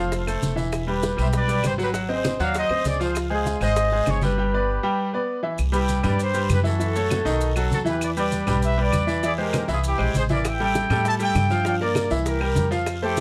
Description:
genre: latin, salsa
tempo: 198 BPM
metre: 4/4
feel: straight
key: C major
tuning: A4 = 440 Hz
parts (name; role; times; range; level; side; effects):
- mellow trumpet section; melody; 0.0-13.2 s; E4 to A5; -28 LUFS; equal; none
- bright grand piano; accompaniment; 0.0-13.2 s; Eb3 to G5; -27 LUFS; equal; none
- upright bass; bass; 0.0-13.2 s; E1 to A2; -28 LUFS; equal; none
- bongos; percussion; 0.1-4.4, 10.5-13.2 s; none; -35 LUFS; equal; none
- congas; percussion; 0.1-13.2 s; none; -32 LUFS; equal; none
- guiro; percussion; 0.1-13.2 s; none; -43 LUFS; equal; none
- maracas; percussion; 0.1-13.2 s; none; -42 LUFS; equal; none
- claves; percussion; 0.3-13.0 s; none; -40 LUFS; equal; none
room: moderate studio ambience, RT60 0.5 s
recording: none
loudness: -23 LUFS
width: mono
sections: 0.0-5.6 A section; 5.6-13.2 A section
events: break 4.4-5.6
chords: 0.1 F; 0.7 Em7; 1.9 Ab7; 3.2 Dbmaj7; 4.4 G; 5.6 Cmaj7; 6.8 F#m7; 7.4 B7; 8.0 Em7; 9.2 Eaug; 10.4 A5; 11.7 Gm7; 12.3 C7

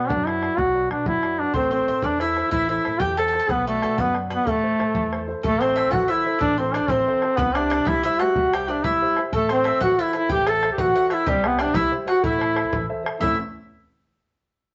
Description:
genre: celtic folk, Celtic jig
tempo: 124 BPM (dotted quarters)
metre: 6/8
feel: straight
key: A dorian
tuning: A4 = 441 Hz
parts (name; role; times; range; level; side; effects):
- warm duduk; melody; 0.0-13.4 s; G3 to A4; -23 LUFS; equal; none
- warm upright piano; accompaniment; 0.0-13.4 s; A1 to E5; -32 LUFS; equal; none
- upright bass; bass; 0.0-13.4 s; A1 to B2; -35 LUFS; equal; none
- bodhran; percussion; 0.1-13.4 s; none; -33 LUFS; equal; none
- bowl-back mandolin; second line; 1.5-13.4 s; G4 to A5; -30 LUFS; equal; none
room: moderate studio reverb, RT60 0.8 s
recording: nothing above 7.7 kHz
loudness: -22 LUFS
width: mono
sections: 0.0-5.4 A section; 5.4-13.2 B section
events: none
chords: 0.0 Bm; 1.5 Am; 3.5 Bm; 4.5 Am; 7.4 C; 9.3 Am; 11.3 C; 12.2 Am

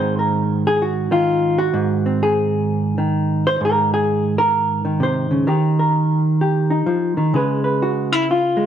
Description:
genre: solo jazz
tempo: 129 BPM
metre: 4/4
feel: swing 67% on 8ths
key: Ab major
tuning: A4 = 440 Hz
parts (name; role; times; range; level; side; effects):
- hollow-body jazz guitar; solo; 0.0-8.7 s; Ab2 to C5; -16 LUFS; right 1 dB; slapback echo
room: little or no reverb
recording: dry, close 1970s-style studio recording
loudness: -16 LUFS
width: side -9 dB against mid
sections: 0.0-8.7 A section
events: hollow-body jazz guitar solo 0.0-8.7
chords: 0.0 Ab9; 5.5 Ebadd9; 7.3 Db7

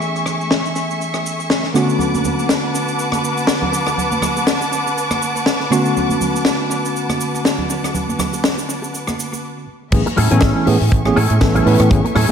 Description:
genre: nu-disco, nu disco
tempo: 121 BPM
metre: 4/4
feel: swing 56% on 16ths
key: unclear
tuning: A4 = 436 Hz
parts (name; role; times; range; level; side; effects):
- tine electric piano; accompaniment; 0.0-12.3 s; D3 to G#5; -20 LUFS; right 1 dB; auto-pan, low-pass filter, analog delay
- rich studio string section; sustained chords; 0.0-12.3 s; A3 to D6; -22 LUFS; equal; sidechain pumping, low-pass filter
- tight funk drum kit; drums; 0.0-12.3 s; cabasa, crash cymbal, hi-hat, rim click, snare drum; -21 LUFS; left 2 dB; low-pass filter on hats, low-pass filter on cymbals, low-pass filter on snare, low-pass filter on perc, low-pass filter on room, analog delay
- congas and bongos; percussion; 2.0-12.3 s; none; -26 LUFS; right 2 dB; analog delay
- fingered electric bass with an envelope filter; bass; 9.9-12.3 s; A1 to A2; -16 LUFS; right 1 dB; none
- kick drum; drums; 9.9-12.0 s; none; -17 LUFS; right 1 dB; none
- electric guitar with an envelope filter; riff; 10.1-12.3 s; C#4 to A4; -22 LUFS; left 1 dB; ensemble chorus, analog delay
room: moderate echo chamber reverb, RT60 1.4 s, studio ambience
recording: echo-heavy mix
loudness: -15 LUFS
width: side -7 dB against mid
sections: 0.0-9.9 A section; 9.9-12.3 B section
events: filter sweep on tine electric piano 0.0-9.9; break 9.4-9.9; drop 9.9-12.3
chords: 0.0 Amaj7; 1.7 Bm7; 9.9 Amaj7

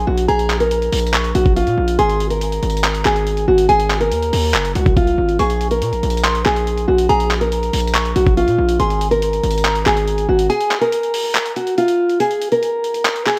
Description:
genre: hip hop, trap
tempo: 141 BPM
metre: 4/4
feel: half-time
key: unclear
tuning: A4 = 441 Hz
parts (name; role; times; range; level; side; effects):
- fingerpicked acoustic archtop guitar; melody; 0.0-13.4 s; F4 to Bb4; -19 LUFS; equal; low-pass filter, tape echo
- delicate synth tine bell; second line; 0.0-10.9 s; Ab5 to Db6; -27 LUFS; equal; chorus, tape echo
- distorted 808-style bass; bass; 0.0-10.5 s; Gb1 to Bb2; -22 LUFS; equal; distortion
- dusty soul sampler-style drum kit; drums; 0.2-13.4 s; handclaps, hi-hat, kick drum; -23 LUFS; equal; none
room: light reverb, digital ambience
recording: dark, warm production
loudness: -17 LUFS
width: mono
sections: 0.0-12.2 A section; 12.2-13.4 B section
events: kick muted 10.5-12.2, 12.2-13.4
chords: 0.0 Bbm; 2.0 Abadd9; 5.4 Bbm7; 8.8 Absus2; 12.2 N.C.

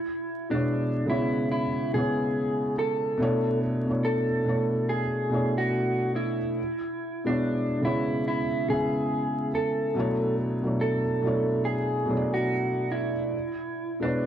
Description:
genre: hip hop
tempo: 71 BPM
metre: 4/4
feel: swing 63% on 16ths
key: B dorian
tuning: A4 = 445 Hz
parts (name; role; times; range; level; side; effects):
- electric guitar through a small old amp; melody; 0.0-14.3 s; D4 to A4; -28 LUFS; right 1 dB; wide subtle chorus
- felt-muted upright piano; accompaniment; 0.5-14.3 s; B2 to E5; -27 LUFS; equal; cassette tape
room: moderate spring reverb, RT60 1.6 s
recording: dark, warm production, vinyl crackle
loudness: -24 LUFS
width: side -10 dB against mid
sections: 0.0-14.3 A section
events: none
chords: 0.0 C#m7; 3.2 Bm11; 6.6 C#m7; 10.0 Bm11; 13.3 C#m7

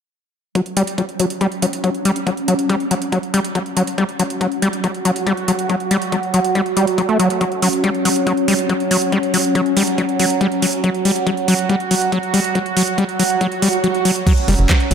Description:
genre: psychedelic trance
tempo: 140 BPM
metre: 4/4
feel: straight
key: unclear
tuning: A4 = 440 Hz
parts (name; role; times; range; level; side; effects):
- bubbling stepped-filter texture; sustained chords; 0.6-14.9 s; F#3 to F#4; -20 LUFS; right 2 dB; chorus, built-in reverb, sidechain pumping
- overdriven acid bass; riff; 0.6-14.9 s; F#3 to A3; -18 LUFS; left 2 dB; distortion, auto-pan, sidechain pumping, dub echo
- electronic kick drum; drums; 0.6-14.8 s; none; -21 LUFS; right 1 dB; overdrive, high-pass filter on kick, studio reverb
- garage drum kit; drums; 0.6-14.9 s; crash cymbal, handclaps, hi-hat, rim click; -23 LUFS; right 4 dB; overdrive, studio reverb
- swell; sound effects; 13.5-14.3 s; none; -25 LUFS; right 3 dB; none
- tight sequencer bass; bass; 14.5-14.9 s; F#1; -14 LUFS; right 1 dB; none
room: moderate lush hall reverb, RT60 2.0 s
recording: none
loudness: -15 LUFS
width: side -7 dB against mid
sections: 0.6-14.3 A section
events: filter sweep on acid bass 0.6-14.3; filter sweep on synth texture 0.6-14.3; swell 13.5-14.3; kick drops out 13.8-14.3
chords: 0.6 F#5

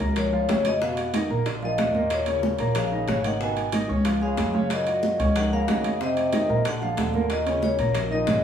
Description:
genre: Afro-Cuban jazz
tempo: 185 BPM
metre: 4/4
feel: straight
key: F# major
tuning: A4 = 440 Hz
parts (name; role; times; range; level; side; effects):
- vibraphone with medium hard mallets; melody; 0.0-8.4 s; A#4 to G#5; -27 LUFS; left 2 dB; none
- trombone with cup mute; second line; 0.0-8.4 s; F#2 to D#3; -32 LUFS; left 2 dB; none
- warm concert grand piano; accompaniment; 0.0-8.4 s; A#2 to C#6; -29 LUFS; right 3 dB; none
- upright bass; bass; 0.0-8.4 s; G#1 to F#2; -28 LUFS; equal; none
- congas; percussion; 0.0-8.4 s; none; -29 LUFS; right 2 dB; none
- timbales; percussion; 0.0-8.4 s; none; -36 LUFS; right 4 dB; none
- bongos; percussion; 0.2-8.4 s; none; -34 LUFS; left 4 dB; none
room: moderate studio reverb, RT60 0.7 s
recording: band playing live in one room, studio reverb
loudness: -21 LUFS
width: side -8 dB against mid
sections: 0.0-8.4 A section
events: none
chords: 0.0 F#maj7 (rootless); 0.8 Bmaj7#11; 1.5 A#; 2.1 D#5; 3.4 G#m; 4.1 C#; 4.7 F#6; 6.0 F5; 6.7 A#; 7.3 D#5

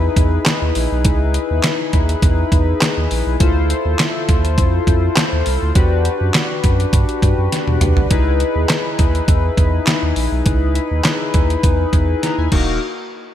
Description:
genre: early-eighties boogie funk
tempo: 102 BPM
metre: 4/4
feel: straight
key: unclear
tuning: A4 = 439 Hz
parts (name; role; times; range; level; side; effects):
- chorused polysynth; accompaniment; 0.0-12.8 s; Bb3 to Bb5; -20 LUFS; left 4 dB; none
- warm sub bass; bass; 0.0-12.8 s; Eb1 to G2; -18 LUFS; right 1 dB; none
- detuned 8-bit digital drum machine; drums; 0.2-12.7 s; crash cymbal, handclaps, hi-hat, kick drum, snare drum, toms; -17 LUFS; right 1 dB; none
room: light reverb, digital ambience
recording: bright 1980s-style digital production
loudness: -14 LUFS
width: side -11 dB against mid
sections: 0.0-8.1 A section; 8.1-12.8 B section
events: drum fill 7.5-8.1, 12.2-12.8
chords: 0.0 Dbm9 (rootless); 3.4 Dm9; 5.8 Em9; 8.1 Dbm9; 12.5 Ebm; 12.8 N.C.

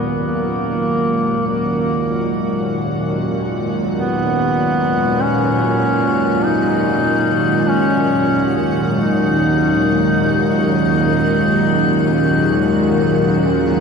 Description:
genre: dark ambient drone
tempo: 48 BPM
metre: 4/4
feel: straight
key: Eb minor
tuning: A4 = 440 Hz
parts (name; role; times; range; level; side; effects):
- dark analog pad; sustained chords; 0.0-13.8 s; Eb3 to Bb4; -19 LUFS; right 1 dB; chorus
- bowed-like drone; drone; 0.0-13.8 s; Eb2 to Bb2; -20 LUFS; equal; built-in reverb
- icy glass pad; texture; 0.0-13.8 s; Gb4 to Gb5; -30 LUFS; equal; chorus, built-in reverb, shimmer reverb
- warm duduk; melody; 0.2-13.8 s; Bb3 to Eb4; -18 LUFS; left 1 dB; shimmer reverb, ping-pong delay
room: wet huge ambient reverb, RT60 7.3 s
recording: nothing above 10.8 kHz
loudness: -14 LUFS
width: side -5 dB against mid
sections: 0.0-13.8 A section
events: fade-in on ambient pad 0.0-13.8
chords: 0.0 Ebm

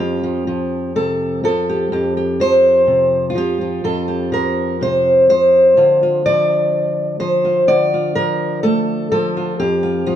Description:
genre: folk, solo fingerstyle acoustic guitar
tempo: 62 BPM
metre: 4/4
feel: straight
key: F major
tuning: A4 = 444 Hz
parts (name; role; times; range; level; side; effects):
- fingerpicked steel-string acoustic guitar; solo; 0.0-10.2 s; F2 to D5; -14 LUFS; equal; none
room: moderate large studio reverb, RT60 0.9 s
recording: dark, warm production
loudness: -14 LUFS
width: side -10 dB against mid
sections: 0.0-10.2 A section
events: none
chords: 0.0 Fadd9; 5.8 Dm; 9.6 F5

